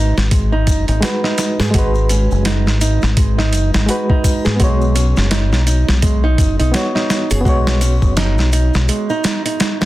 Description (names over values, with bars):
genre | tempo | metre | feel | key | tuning
trip hop | 84 BPM | 4/4 | swing 59% on 16ths | G# minor | A4 = 443 Hz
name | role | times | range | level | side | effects
reed electric piano | accompaniment | 0.0-9.9 s | G#3 to C#5 | -22 LUFS | equal | fast tremolo, harmonic tremolo, vintage 12-bit sampler grit, tape echo
nylon-string guitar | arpeggios | 0.0-9.9 s | G#3 to G#4 | -21 LUFS | right 3 dB | vintage 12-bit sampler grit, digital delay
deep dub fingered electric bass | bass | 0.0-8.9 s | F#1 to G#2 | -15 LUFS | equal | tube saturation
boom bap sampler-style drum kit | drums | 0.2-9.9 s | hi-hat, kick drum, snare drum | -17 LUFS | equal | none
maracas and triangle | percussion | 0.2-9.9 s | none | -31 LUFS | left 4 dB | none
room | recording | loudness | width
digital ambience | dense, heavily limited modern master | -13 LUFS | side -16 dB against mid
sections
0.0-9.9 A section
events
filter sweep on reed electric piano 0.0-9.9; break 8.9-9.9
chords
0.0 G#m7